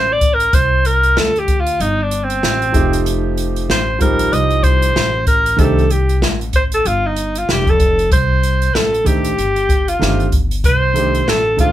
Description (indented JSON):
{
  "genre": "hip hop, jazz-hop",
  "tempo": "95 BPM",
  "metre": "4/4",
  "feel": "swing 60% on 16ths",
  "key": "C dorian",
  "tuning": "A4 = 439 Hz",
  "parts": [
    { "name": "clear alto saxophone", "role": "melody", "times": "0.0-11.7 s", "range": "C4 to Eb5", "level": "-16 LUFS", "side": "equal", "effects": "none" },
    { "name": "upright bass", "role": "bass", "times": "0.0-11.7 s", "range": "F1 to D2", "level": "-19 LUFS", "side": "equal", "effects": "none" },
    { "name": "open jazz drum kit", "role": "drums", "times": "0.2-11.7 s", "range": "hi-hat, kick drum, snare drum", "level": "-17 LUFS", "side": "equal", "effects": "none" },
    { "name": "warm grand piano", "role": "accompaniment", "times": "2.7-11.7 s", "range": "Eb3 to A4", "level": "-19 LUFS", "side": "right 2 dB", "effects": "none" }
  ],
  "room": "moderate small room ambience, RT60 0.5 s",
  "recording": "band playing live in one room",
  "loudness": "-13 LUFS",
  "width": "side -12 dB against mid",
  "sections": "0.0-8.1 A section; 8.1-11.7 B section",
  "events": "alto saxophone solo 0.0-8.1",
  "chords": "0.0 Csus2; 2.7 F9; 5.6 C5; 8.1 Cm69",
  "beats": "| 0.54 1.17 1.80 2.43 | 3.06 3.69 4.32 4.96 | 5.59 6.22 6.85 7.48 | 8.11 8.74 9.38 10.01 | 10.64 11.27"
}